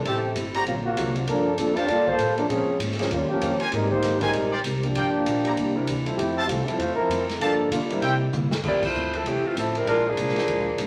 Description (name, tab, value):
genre	jazz, big band swing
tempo	196 BPM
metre	4/4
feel	swing 60% on 8ths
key	F major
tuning	A4 = 440 Hz
part	warm baby grand piano	accompaniment	0.0-10.0 s	F3 to Bb4	-35 LUFS	equal	none
part	upright bass	bass	0.0-10.9 s	G1 to D3	-34 LUFS	equal	none
part	clear trombone section	second line	0.1-8.3 s	C3 to D5	-26 LUFS	equal	none
part	fingerpicked plugged-in steel-string acoustic guitar	accompaniment	0.1-10.9 s	F2 to C5	-35 LUFS	equal	none
part	bright trumpet section	stabs	0.1-8.1 s	E4 to Bb5	-31 LUFS	equal	none
part	swinging big-band drum kit	drums	0.1-10.9 s	crash cymbal, hi-hat, kick drum, ride cymbal, snare drum, toms	-35 LUFS	equal	none
part	bright saxophone section	melody	8.7-10.9 s	E3 to D5	-25 LUFS	equal	none
room	wet large studio reverb, RT60 0.9 s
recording	vinyl crackle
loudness	-24 LUFS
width	mono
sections	0.0-8.6 A section; 8.6-10.9 B section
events	trombone section solo 0.0-8.6; drum fill 8.3-8.6; band accent 8.8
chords	0.1 Am7; 0.7 D7alt; 1.3 Gm9; 2.5 Bbm9; 3.1 Eb13; 3.7 Abmaj9; 5.0 Gm7; 5.6 C9; 6.2 Fmaj7; 7.4 Gm9; 8.0 C7; 8.6 Fmaj7; 9.9 Bb7#11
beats	| 0.05 0.36 0.66 0.97 | 1.28 1.58 1.89 2.20 | 2.50 2.81 3.12 3.42 | 3.73 4.03 4.34 4.65 | 4.95 5.26 5.57 5.88 | 6.18 6.49 6.79 7.10 | 7.41 7.72 8.02 8.33 | 8.64 8.95 9.25 9.56 | 9.87 10.17 10.48 10.79